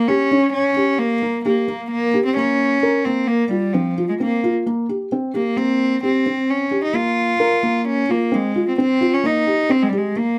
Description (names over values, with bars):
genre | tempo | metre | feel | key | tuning
contemporary instrumental, chamber music in an uneven meter | 131 BPM | 5/4 | straight | Bb dorian | A4 = 440 Hz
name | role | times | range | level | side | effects
warm cello | melody | 0.0-10.4 s | F3 to F4 | -21 LUFS | equal | none
felt-muted upright piano | arpeggios | 0.0-10.4 s | Bb3 to Bb4 | -23 LUFS | equal | none
room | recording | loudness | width
light reverb | none | -19 LUFS | mono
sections
0.0-2.4 A section; 2.4-10.4 B section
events
none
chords
0.0 Eb7 (rootless); 2.4 Bbmadd9; 4.7 C5/Bb; 6.9 Bbsus2; 9.2 Cm7